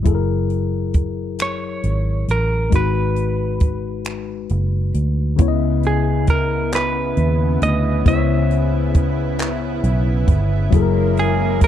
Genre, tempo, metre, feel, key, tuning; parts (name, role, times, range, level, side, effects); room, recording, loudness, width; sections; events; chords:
slow six-eight R&B; 45 BPM (dotted quarters); 6/8; straight; C# dorian; A4 = 440 Hz
tine electric piano; accompaniment; 0.0-11.7 s; C#3 to D#5; -23 LUFS; left 11 dB
vintage muted fingered electric bass; bass; 0.1-11.7 s; F#1 to D#2; -20 LUFS; right 1 dB
compact cocktail drum kit; drums; 0.1-11.7 s; finger snaps, handclaps, hi-hat, kick drum; -17 LUFS; right 1 dB
semi-hollow electric guitar; melody; 1.4-11.7 s; G#4 to E5; -23 LUFS; right 4 dB; spring reverb
lush unison pad; sustained chords; 5.4-11.7 s; C#3 to E4; -26 LUFS; right 3 dB; chorus
warm horn section; stabs; 10.7-11.7 s; E3 to A#4; -27 LUFS; right 13 dB
small room ambience; dry, close 1970s-style studio recording; -16 LUFS; side -11 dB against mid
0.0-5.4 A section; 5.4-11.7 B section
kick muted 4.1-5.4
0.1 F#9; 2.7 G#m7; 5.4 C#m9; 10.7 F#9